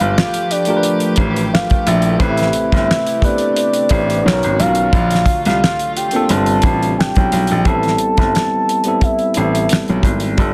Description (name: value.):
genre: R&B, neo-soul.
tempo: 88 BPM.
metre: 4/4.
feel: swing 54% on 16ths.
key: A minor.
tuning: A4 = 441 Hz.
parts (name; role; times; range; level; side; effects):
soft octave-layered synth lead; melody; 0.0-10.5 s; C#5 to A5; -21 LUFS; equal; chorus, tremolo.
dark studio string section; sustained chords; 0.0-7.6 s; C3 to B4; -27 LUFS; equal; none.
clear baby grand piano; bass; 0.0-10.5 s; G1 to C2; -20 LUFS; equal; none.
damped 70s drum kit; drums; 0.2-10.5 s; finger snaps, hi-hat, kick drum, snare drum; -20 LUFS; equal; none.
tine electric piano; accompaniment; 0.7-10.5 s; G3 to C5; -22 LUFS; equal; none.
room: light reverb, small room ambience.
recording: dense, heavily limited modern master.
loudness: -15 LUFS.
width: mono.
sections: 0.0-7.7 A section; 7.7-10.5 B section.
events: none.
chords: 0.0 G9; 2.2 Am9; 4.2 Bmaj7; 4.9 Bbmaj7; 6.3 G9sus4; 7.7 Am9.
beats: 0.15 0.84 1.52 | 2.20 2.88 3.56 4.25 | 4.93 5.61 6.29 6.97 | 7.65 8.34 9.02 9.70 | 10.38.